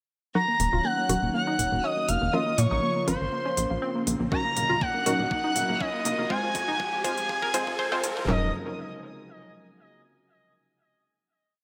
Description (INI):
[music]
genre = progressive house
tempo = 121 BPM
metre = 4/4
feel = straight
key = Eb dorian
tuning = A4 = 441 Hz
[part]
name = expressive portamento lead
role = melody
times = 0.3-8.5 s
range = C5 to Bb5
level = -31 LUFS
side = equal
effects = chorus, cassette tape, delay
[part]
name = tight sequenced synth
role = arpeggios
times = 0.3-8.5 s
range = F3 to C5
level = -35 LUFS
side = equal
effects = chorus, sidechain pumping, digital delay
[part]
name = clear studio violin section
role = second line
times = 0.4-8.5 s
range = C6 to Bb6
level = -37 LUFS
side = equal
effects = vintage 12-bit sampler grit, sidechain pumping
[part]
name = lush unison pad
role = sustained chords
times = 0.4-8.5 s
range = C3 to Bb4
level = -38 LUFS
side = equal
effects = chorus, sidechain pumping
[part]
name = unison pluck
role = stabs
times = 0.4-8.5 s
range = F3 to C5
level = -33 LUFS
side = equal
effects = sidechain pumping, digital delay
[part]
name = riser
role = sound effects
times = 3.8-8.3 s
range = none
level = -41 LUFS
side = equal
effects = none
[part]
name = tight sequencer bass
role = bass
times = 0.6-8.5 s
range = Eb1 to Bb2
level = -32 LUFS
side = equal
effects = sidechain pumping
[part]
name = electronic hi-hat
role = drums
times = 0.6-8.1 s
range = none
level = -33 LUFS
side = equal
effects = sidechain pumping on hats, high-pass filter on hats
[part]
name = pop drum kit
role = drums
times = 4.3-8.4 s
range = handclaps, kick drum, snare drum, toms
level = -35 LUFS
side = equal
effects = none
[sound]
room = moderate lush hall reverb, RT60 2.0 s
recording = high-pass filter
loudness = -26 LUFS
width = mono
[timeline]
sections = 0.4-8.3 build; 8.3-10.3 final chord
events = build-up 0.4-8.3; filter sweep on synth pluck 0.4-8.3; filter sweep 0.4-8.3; riser 3.8-8.3; drum fill 4.3-8.3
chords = 0.4 Ebm7; 2.3 Bbmadd9; 4.3 Ebm7; 6.3 Fm; 8.3 Ebm7